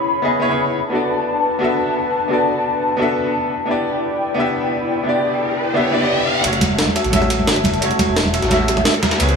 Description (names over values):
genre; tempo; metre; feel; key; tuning
liquid drum and bass; 174 BPM; 4/4; straight; F# phrygian; A4 = 440 Hz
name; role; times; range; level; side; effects
bright baby grand piano; accompaniment; 0.0-9.4 s; A3 to E5; -19 LUFS; equal; tape echo
airy breathy pad; sustained chords; 0.0-9.4 s; D4 to C#6; -21 LUFS; left 3 dB; chorus, sidechain pumping
riser; sound effects; 4.9-9.4 s; none; -24 LUFS; equal; none
Celtic harp; arpeggios; 6.4-9.4 s; E4 to E5; -25 LUFS; equal; low-pass filter, tape echo
sub bass with octave; bass; 6.4-9.4 s; E1 to C#2; -22 LUFS; equal; none
dusty soul sampler-style drum kit; drums; 6.4-9.3 s; ride cymbal, snare drum; -24 LUFS; right 1 dB; overdrive, high-pass filter on snare, high-pass filter on cymbals, high-pass filter on room
electronic kick drum; drums; 6.4-9.3 s; none; -30 LUFS; left 2 dB; none
jungle sampler-style drum kit; drums; 6.4-9.4 s; hi-hat, snare drum; -21 LUFS; equal; low-pass filter on hats, low-pass filter on toms, low-pass filter on snare, low-pass filter on room
bongos and congas; percussion; 6.5-9.4 s; none; -21 LUFS; right 2 dB; none
room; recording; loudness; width
moderate lush hall reverb, RT60 2.5 s; small room ambience; -15 LUFS; side -5 dB against mid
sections
0.0-6.4 A section; 6.4-9.4 B section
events
riser 4.9-6.4, 6.4-9.4; build-up 6.4-9.4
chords
0.0 C#m7; 0.8 Bm7; 3.5 Em7; 6.4 F#m7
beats
0.23 0.58 | 0.93 1.27 1.61 1.96 | 2.30 2.65 2.99 3.34 | 3.68 4.03 4.37 4.72 | 5.06 5.41 5.75 6.10 | 6.44 6.79 7.13 7.48 | 7.82 8.17 8.51 8.86 | 9.20